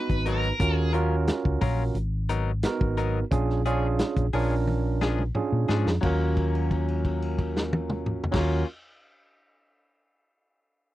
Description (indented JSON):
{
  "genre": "straight-eighth soul blues",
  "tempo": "88 BPM",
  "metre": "4/4",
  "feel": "straight",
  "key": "Eb minor",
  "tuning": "A4 = 441 Hz",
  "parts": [
    { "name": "biting overdriven guitar", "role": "melody", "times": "0.0-0.9 s", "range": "Bb4 to Cb5", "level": "-30 LUFS", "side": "left 1 dB", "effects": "tremolo, slapback echo" },
    { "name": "overdriven tine electric piano", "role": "accompaniment", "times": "0.0-8.6 s", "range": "Cb4 to Cb5", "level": "-29 LUFS", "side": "right 5 dB", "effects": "none" },
    { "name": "hollow-body short-scale fingered electric bass", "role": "bass", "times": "0.1-8.6 s", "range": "Ab1 to Bb2", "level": "-26 LUFS", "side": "left 1 dB", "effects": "none" },
    { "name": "warm soul drum kit", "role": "drums", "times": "0.1-8.5 s", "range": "crash cymbal, hi-hat, kick drum, snare drum, toms", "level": "-29 LUFS", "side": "left 1 dB", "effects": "none" },
    { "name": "direct-recorded clean electric guitar", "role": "stabs", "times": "0.3-8.7 s", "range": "F3 to Bb4", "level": "-31 LUFS", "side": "left 6 dB", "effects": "none" }
  ],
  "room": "little or no reverb",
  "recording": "dry, close 1970s-style studio recording",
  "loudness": "-23 LUFS",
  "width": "side -15 dB against mid",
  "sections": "0.0-6.0 A section; 6.0-8.7 B section",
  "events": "drum fill 4.7-6.0; held note 6.0-8.3",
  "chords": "0.0 Abm9; 0.6 Ebm9; 2.0 Abm9; 3.3 Bb7#9; 6.0 Ebm9"
}